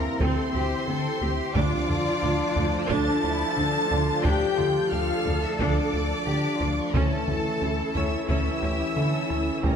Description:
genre	cinematic, hybrid orchestral and electronic film score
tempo	89 BPM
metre	4/4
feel	straight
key	D minor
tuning	A4 = 439 Hz
part	warm symphonic violin section	melody	0.0-9.8 s	A5 to A6	-34 LUFS	left 2 dB	none
part	rich symphonic violin section	second line	0.0-9.8 s	A4 to A5	-33 LUFS	left 1 dB	none
part	warm studio viola section	accompaniment	0.0-9.8 s	F3 to E4	-32 LUFS	right 1 dB	none
part	bright trombone section	sustained chords	0.0-9.8 s	E3 to D4	-34 LUFS	right 3 dB	none
part	mellow French horn section	sustained chords	0.0-9.8 s	A3 to A4	-31 LUFS	left 4 dB	none
part	warm analog pad	sustained chords	0.0-9.8 s	E3 to E5	-36 LUFS	equal	none
part	rubbery square bass	riff	0.0-9.8 s	D2 to D3	-30 LUFS	left 1 dB	none
part	warm studio cello section	bass	0.0-9.8 s	C#4 to Bb4	-32 LUFS	equal	none
part	clear grand piano	texture	0.0-9.8 s	G3 to G5	-40 LUFS	left 2 dB	none
part	warm symphonic double bass section	bass	0.2-9.7 s	D2	-32 LUFS	right 4 dB	none
part	taiko ensemble	drums	0.2-9.8 s	none	-30 LUFS	equal	none
part	reverse cymbal	sound effects	9.6-9.8 s	none	barely audible	none	none
room	wet scoring stage reverb, RT60 1.6 s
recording	none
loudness	-22 LUFS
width	side -7 dB against mid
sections	0.0-9.8 A section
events	none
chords	0.0 C/D; 1.6 Dm; 6.9 A/D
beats	0.20 0.88 | 1.55 2.23 2.90 3.57 | 4.25 4.92 5.60 6.27 | 6.95 7.62 8.29 8.97 | 9.64

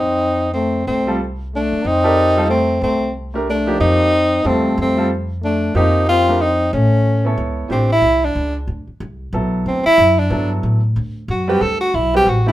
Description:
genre	modal jazz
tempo	184 BPM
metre	3/4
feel	swing 62% on 8ths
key	F mixolydian, D mixolydian from 7.7 s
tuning	A4 = 440 Hz
part	breathy tenor saxophone	melody	0.0-12.5 s	C4 to A4	-16 LUFS	equal	none
part	growling trombone	second line	0.0-7.3 s	A3 to C4	-21 LUFS	left 2 dB	none
part	upright bass	bass	0.0-12.5 s	A1 to A2	-20 LUFS	equal	none
part	warm baby grand piano	accompaniment	1.1-12.5 s	E3 to D5	-22 LUFS	right 2 dB	none
room	moderate club reverb, RT60 0.8 s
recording	minimal, uncompressed stereo recording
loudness	-14 LUFS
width	side -14 dB against mid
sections	0.0-7.7 A section; 7.7-12.5 B section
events	tenor saxophone solo 7.7-12.5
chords	0.0 F9; 6.7 Aadd9; 7.7 D13; 11.6 Cadd9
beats	0.22 0.55 | 0.87 1.20 1.52 | 1.85 2.18 2.50 | 2.83 3.15 3.48 | 3.80 4.13 4.45 | 4.78 5.11 5.43 | 5.75 6.08 6.41 | 6.73 7.06 7.38 | 7.71 8.03 8.36 | 8.68 9.01 9.34 | 9.66 9.99 10.31 | 10.64 10.96 11.29 | 11.62 11.94 12.27

